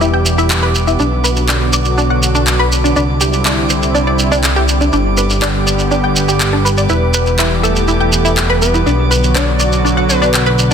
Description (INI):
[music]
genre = progressive house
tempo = 122 BPM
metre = 4/4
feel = straight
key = E minor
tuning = A4 = 439 Hz
[part]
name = supersaw pad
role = sustained chords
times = 0.0-10.7 s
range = D3 to G4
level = -18 LUFS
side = right 1 dB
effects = low-pass filter
[part]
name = analog pluck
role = arpeggios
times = 0.0-10.7 s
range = D4 to G5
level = -17 LUFS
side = left 1 dB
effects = analog chorus, ping-pong delay
[part]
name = fat analog bass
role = bass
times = 0.0-10.7 s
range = E1 to C2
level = -16 LUFS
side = equal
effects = none
[part]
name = shekere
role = percussion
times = 0.0-10.7 s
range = none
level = -20 LUFS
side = right 2 dB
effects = none
[part]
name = drifting glass-harmonics texture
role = texture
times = 0.0-10.7 s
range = D6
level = -26 LUFS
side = right 3 dB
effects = chorus, built-in reverb
[part]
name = electronic handclaps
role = drums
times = 0.5-10.4 s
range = none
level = -20 LUFS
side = left 1 dB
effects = studio reverb
[part]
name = plucky unison lead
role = melody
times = 6.9-10.7 s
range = A4 to D5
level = -19 LUFS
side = equal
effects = ping-pong delay
[sound]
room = light reverb, digital ambience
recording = dense, heavily limited modern master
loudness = -11 LUFS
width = side -7 dB against mid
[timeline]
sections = 0.0-10.7 A section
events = filter sweep on supersaw synth 0.0-10.7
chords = 0.0 Em; 1.0 Bm; 3.0 Cadd9; 4.9 G; 6.9 Em; 8.9 Bm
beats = 0.01 0.50 | 0.99 1.49 1.98 2.47 | 2.96 3.45 3.94 4.44 | 4.93 5.42 5.91 6.40 | 6.90 7.39 7.88 8.37 | 8.86 9.36 9.85 10.34